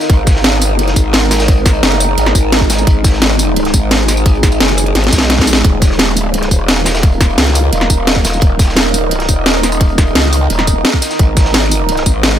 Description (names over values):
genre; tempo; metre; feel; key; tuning
dark technical drum and bass; 173 BPM; 4/4; straight; unclear; A4 = 440 Hz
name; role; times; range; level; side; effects
deep dark ambient pad; sustained chords; 0.0-12.4 s; Ab3 to F5; -17 LUFS; right 1 dB; chorus, built-in reverb, sidechain pumping
crunchy breakbeat drum kit; drums; 0.0-12.4 s; hi-hat, snare drum; -23 LUFS; equal; high-pass filter on hats, high-pass filter on snare, high-pass filter on room
drum and bass drum kit; drums; 0.0-12.3 s; hi-hat, snare drum, tambourine; -14 LUFS; equal; overdrive
growl bass; bass; 0.1-12.4 s; Eb1 to Db2; -14 LUFS; equal; chorus, tube saturation
electronic kick drum; drums; 0.1-12.1 s; none; -11 LUFS; equal; overdrive
room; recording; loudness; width
digital ambience; none; -9 LUFS; side -10 dB against mid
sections
0.0-12.4 A section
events
drum fill 5.0-5.6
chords
0.1 Ab5; 5.6 Eb5; 11.2 Ab5